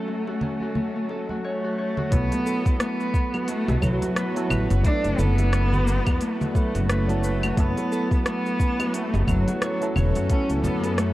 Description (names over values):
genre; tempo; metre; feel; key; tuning
organic downtempo; 88 BPM; 4/4; swing 58% on 16ths; B minor; A4 = 441 Hz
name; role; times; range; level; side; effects
warm cello; melody; 0.0-11.1 s; F#3 to D4; -28 LUFS; right 1 dB; tape echo
tine electric piano; accompaniment; 0.0-11.1 s; F#3 to B4; -31 LUFS; right 1 dB; analog chorus, sidechain pumping
bowed-like drone; sustained chords; 0.0-11.1 s; F#3 to D5; -34 LUFS; left 1 dB; built-in reverb, sidechain pumping
Celtic harp; arpeggios; 0.0-11.1 s; A3 to C#5; -29 LUFS; left 2 dB; vintage 12-bit sampler grit, tape echo
organic electronic drum kit; drums; 0.1-11.1 s; claves, hi-hat, rim click, shaker; -31 LUFS; equal; low-pass filter on perc, low-pass filter on hats, low-pass filter on snare, low-pass filter on room
bongos and congas; percussion; 0.3-11.0 s; none; -33 LUFS; right 2 dB; none
upright bass; bass; 2.1-11.1 s; E1 to F#2; -23 LUFS; equal; sidechain pumping
electronic kick drum; drums; 2.1-10.5 s; none; -22 LUFS; equal; none
room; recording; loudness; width
light reverb, studio ambience; worn, warbling old tape, cassette tape, warbly pitch drift; -21 LUFS; side -16 dB against mid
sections
0.0-2.1 A section; 2.1-11.1 B section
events
none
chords
0.0 F#m7; 2.1 Bm7; 7.6 F#m7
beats
0.07 0.76 1.44 | 2.12 2.80 3.48 4.17 | 4.85 5.53 6.21 6.89 | 7.57 8.26 8.94 9.62 | 10.30 10.98